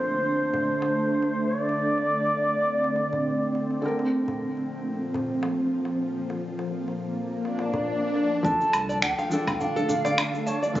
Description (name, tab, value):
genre	organic downtempo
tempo	104 BPM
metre	4/4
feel	swing 56% on 16ths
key	D minor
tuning	A4 = 439 Hz
part	mellow hollow bansuri	melody	0.0-3.5, 8.4-10.8 s	C5 to A5	-26 LUFS	equal	ping-pong delay
part	felt-muted upright piano	accompaniment	0.0-10.8 s	D3 to Bb4	-34 LUFS	equal	sidechain pumping, low-pass filter, ping-pong delay
part	ethereal airy pad	sustained chords	0.0-10.8 s	Bb2 to D4	-28 LUFS	right 1 dB	ensemble chorus, built-in reverb, sidechain pumping
part	darbuka	percussion	0.5-10.7 s	none	-39 LUFS	left 1 dB	none
part	swell	sound effects	7.5-8.4 s	none	-26 LUFS	left 1 dB	none
part	nylon-string guitar	arpeggios	8.4-10.8 s	D4 to A5	-29 LUFS	equal	ping-pong delay
part	warm sub bass	bass	8.4-10.8 s	C2 to D2	-36 LUFS	equal	sidechain pumping
part	electronic kick drum	drums	8.4-10.8 s	none	-30 LUFS	equal	overdrive
part	electronic cabasa, woodblock and finger snaps	drums	8.5-10.8 s	none	-28 LUFS	equal	overdrive
room	wet lush hall reverb, RT60 2.3 s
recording	recorded on a phone in the room, club reverb, compression, nothing above 7.5 kHz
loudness	-23 LUFS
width	side -14 dB against mid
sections	0.0-8.4 A section; 8.4-10.8 B section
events	swell 7.5-8.4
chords	0.0 Dm; 3.8 Bbadd9; 8.4 Dm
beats	0.37 0.95 | 1.52 2.10 2.68 3.25 | 3.83 4.41 4.99 5.56 | 6.14 6.72 7.29 7.87 | 8.45 9.03 9.60 10.18 | 10.76